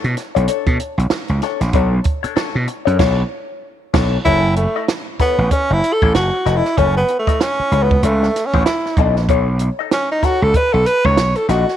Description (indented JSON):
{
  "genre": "funk",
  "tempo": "95 BPM",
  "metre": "4/4",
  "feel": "swing 60% on 16ths",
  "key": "unclear",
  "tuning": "A4 = 440 Hz",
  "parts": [
    { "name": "vintage hollow-body jazz guitar", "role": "accompaniment", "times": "0.0-11.7 s", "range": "D4 to D#5", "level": "-22 LUFS", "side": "left 14 dB", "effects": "wah" },
    { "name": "gritty slap bass", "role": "bass", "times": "0.0-11.6 s", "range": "E#1 to B2", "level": "-16 LUFS", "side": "right 1 dB", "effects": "overdrive" },
    { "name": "compact cocktail drum kit", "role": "drums", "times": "0.0-11.7 s", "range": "crash cymbal, hi-hat, kick drum, snare drum", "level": "-20 LUFS", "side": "right 3 dB", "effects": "none" },
    { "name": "breathy tenor saxophone", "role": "melody", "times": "4.2-11.8 s", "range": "A3 to C#5", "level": "-17 LUFS", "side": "right 1 dB", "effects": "none" }
  ],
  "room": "light reverb, small room ambience",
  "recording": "1960s-style stereo",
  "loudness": "-14 LUFS",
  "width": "side -10 dB against mid",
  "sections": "0.0-4.3 A section; 4.3-11.8 B section",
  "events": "band accent 3.0-4.3; tenor saxophone solo 4.3-11.8",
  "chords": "0.0 Bm9; 4.3 F#m7; 9.3 B9"
}